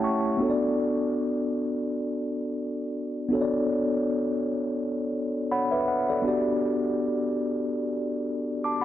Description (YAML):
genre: reggae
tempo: 82 BPM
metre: 4/4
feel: swing 56% on 16ths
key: B minor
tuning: A4 = 440 Hz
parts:
  - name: mellow tine electric piano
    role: solo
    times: 0.0-8.8 s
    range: A3 to D6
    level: -24 LUFS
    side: equal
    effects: medium stereo tremolo, dub echo
room: light reverb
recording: none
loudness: -25 LUFS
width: side -12 dB against mid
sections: 0.0-8.8 A section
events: tine electric piano fill 0.0-0.4, 5.1-6.2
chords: 0.4 Bm7; 6.2 Gmaj7